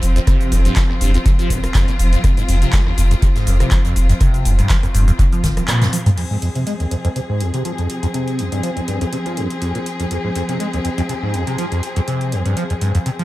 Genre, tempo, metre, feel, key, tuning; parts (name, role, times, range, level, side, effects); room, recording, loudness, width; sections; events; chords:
acid house; 122 BPM; 4/4; swing 54% on 16ths; F minor; A4 = 440 Hz
rich chamber string section; sustained chords; 0.0-13.2 s; F3 to Ab4; -25 LUFS; left 1 dB; sidechain pumping
round analog bass; bass; 0.0-5.6 s; F1; -15 LUFS; equal; sidechain pumping
booming analog drum machine; drums; 0.0-13.2 s; cabasa, crash cymbal, handclaps, hi-hat, rim click, toms; -25 LUFS; equal; analog delay
open jazz drum kit; drums; 0.0-6.2 s; hi-hat, snare drum; -34 LUFS; right 2 dB
liquid acid bass; riff; 0.2-13.2 s; F1 to Ab3; -20 LUFS; equal; phaser, overdrive, lush chorus, dub echo
electronic kick drum; drums; 0.3-5.5 s; -16 LUFS; equal
little or no reverb; echo-heavy mix; -15 LUFS; side -17 dB against mid
0.0-6.2 A section; 6.2-13.2 B section
drop 0.0-6.2; drum fill 5.4-6.2; band accent 5.7
0.0 F5; 6.2 Fm